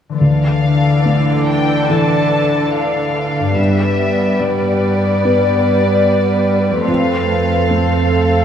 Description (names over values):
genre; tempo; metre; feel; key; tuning
cinematic, emotional film score for orchestra; 72 BPM; 4/4; rubato; D dorian; A4 = 440 Hz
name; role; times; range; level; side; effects
concert harp; arpeggios; 0.1-8.4 s; F2 to B4; -21 LUFS; left 5 dB; none
rich studio violin section; melody; 0.2-8.4 s; D5 to A5; -21 LUFS; left 3 dB; none
dark studio violin section; second line; 0.2-8.4 s; A4 to D5; -19 LUFS; left 3 dB; none
felt-muted upright piano; accompaniment; 0.2-8.4 s; D2 to B4; -20 LUFS; equal; none
rich studio viola section; accompaniment; 0.2-8.4 s; E3 to D4; -20 LUFS; right 3 dB; none
warm studio cello section; bass; 0.2-8.4 s; F2 to D3; -19 LUFS; right 3 dB; none
room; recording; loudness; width
moderate scoring stage reverb, RT60 2.0 s; none; -12 LUFS; side -8 dB against mid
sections
0.2-8.4 A section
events
none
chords
0.2 Dmadd9; 3.6 G; 6.9 F